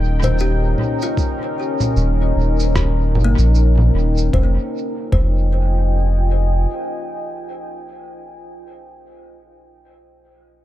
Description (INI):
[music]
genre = ambient dub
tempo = 76 BPM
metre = 4/4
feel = swing 59% on 16ths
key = F minor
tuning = A4 = 438 Hz
[part]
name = deep dark ambient pad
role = sustained chords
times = 0.0-8.3 s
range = Db4 to Ab5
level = -24 LUFS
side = left 2 dB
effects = chorus, built-in reverb
[part]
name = soft dub sub bass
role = bass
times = 0.0-6.7 s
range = Eb1 to Bb1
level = -15 LUFS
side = equal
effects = none
[part]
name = bubbling stepped-filter texture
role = texture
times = 0.0-4.4 s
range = G5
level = -36 LUFS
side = right 4 dB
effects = chorus, built-in reverb
[part]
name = kalimba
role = arpeggios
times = 0.2-9.0 s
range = Bb3 to C5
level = -30 LUFS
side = left 4 dB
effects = dub echo
[part]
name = electronic congas, shaker and rim click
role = drums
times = 0.2-4.3 s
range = none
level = -24 LUFS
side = right 1 dB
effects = overdrive, dub echo
[part]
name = electronic kick drum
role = drums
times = 1.2-5.4 s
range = none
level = -19 LUFS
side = equal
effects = overdrive
[sound]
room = digital ambience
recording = echo-heavy mix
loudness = -15 LUFS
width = side -14 dB against mid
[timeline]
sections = 0.0-4.3 A section; 4.3-7.5 B section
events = none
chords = 0.0 Eb7; 4.3 Fm9